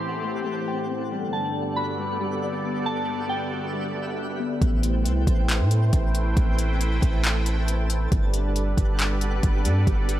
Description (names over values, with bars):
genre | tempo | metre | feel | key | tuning
hip hop, atmospheric cloud-rap | 137 BPM | 4/4 | half-time | A dorian | A4 = 439 Hz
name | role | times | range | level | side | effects
soft synth bell | melody | 0.0-3.7 s | G5 to C6 | -31 LUFS | equal | chorus, low-pass filter, ping-pong delay
sweeping resonant pad | sustained chords | 0.0-10.2 s | G2 to G5 | -30 LUFS | right 1 dB | chorus, sidechain pumping, low-pass filter
Celtic harp | arpeggios | 0.0-7.5 s | G3 to G5 | -32 LUFS | left 5 dB | low-pass filter, ping-pong delay
twinkling granular texture | texture | 0.0-10.2 s | B3 to A5 | -35 LUFS | right 1 dB | built-in reverb
long sustained 808-style bass | bass | 4.6-10.2 s | G1 to A2 | -22 LUFS | equal | none
smooth R&B drum kit | drums | 4.6-10.2 s | handclaps, hi-hat, kick drum | -24 LUFS | equal | overdrive
room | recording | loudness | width
little or no reverb | none | -22 LUFS | side -13 dB against mid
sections
0.0-4.6 A section; 4.6-10.2 B section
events
none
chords
0.0 Am7; 1.1 Gmaj7; 4.6 Am7; 8.1 Gmaj7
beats
0.24 0.67 | 1.11 1.55 1.99 2.42 | 2.86 3.30 3.74 4.18 | 4.62 5.05 5.49 5.93 | 6.37 6.80 7.24 7.68 | 8.12 8.56 8.99 9.43 | 9.87